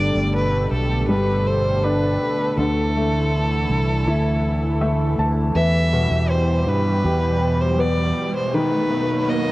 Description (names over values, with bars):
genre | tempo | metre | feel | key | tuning
pop ballad | 81 BPM | 4/4 | straight | E minor | A4 = 441 Hz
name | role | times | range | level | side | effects
rich violin | melody | 0.0-9.5 s | A4 to E5 | -24 LUFS | equal | cassette tape
clear grand piano | accompaniment | 0.0-9.5 s | B2 to A5 | -24 LUFS | left 2 dB | cassette tape
lush unison pad | sustained chords | 0.0-9.5 s | B2 to B4 | -26 LUFS | right 1 dB | chorus, phaser, cassette tape
fingered electric bass | bass | 0.0-8.1 s | G1 to G2 | -20 LUFS | equal | none
riser | sound effects | 7.1-9.5 s | none | -30 LUFS | right 3 dB | none
room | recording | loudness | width
moderate spring reverb, RT60 2.2 s | home recording on cassette, faint mains hum | -18 LUFS | side -18 dB against mid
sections
0.0-9.5 A section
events
grand piano fill 4.4-5.6; riser 7.1-9.5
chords
0.0 Gadd9; 2.6 Dsus2; 5.6 Em; 8.5 B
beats
0.34 1.09 1.84 | 2.58 3.33 4.07 4.81 | 5.56 6.30 7.04 7.78 | 8.53 9.27